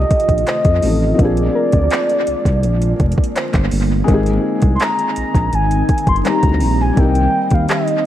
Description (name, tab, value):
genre	contemporary R&B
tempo	83 BPM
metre	4/4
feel	straight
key	unclear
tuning	A4 = 440 Hz
part	mellow horn-like synth lead	melody	0.0-8.1 s	D5 to C6	-19 LUFS	equal	chorus, tape echo
part	felt-muted upright piano	accompaniment	0.0-8.1 s	C3 to Bb4	-21 LUFS	left 3 dB	tape echo
part	ethereal airy pad	sustained chords	0.0-8.1 s	C3 to F4	-24 LUFS	right 1 dB	ensemble chorus, built-in reverb, sidechain pumping
part	smooth gliding synth bass	bass	0.0-7.7 s	F1 to F2	-17 LUFS	equal	none
part	soft round pluck	texture	0.0-8.1 s	G4 to D5	-28 LUFS	equal	chorus, tape echo
part	smooth R&B drum kit	drums	0.1-8.0 s	handclaps, hi-hat, kick drum	-17 LUFS	equal	overdrive, tape echo
room	light reverb, digital ambience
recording	echo-heavy mix, vinyl crackle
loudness	-13 LUFS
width	side -12 dB against mid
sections	0.0-8.1 A section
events	none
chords	0.0 F7; 1.2 Bb7; 4.1 Abmaj7; 7.0 Cm7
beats	0.47 | 1.19 1.91 2.63 3.36 | 4.08 4.80 5.53 6.25 | 6.97 7.70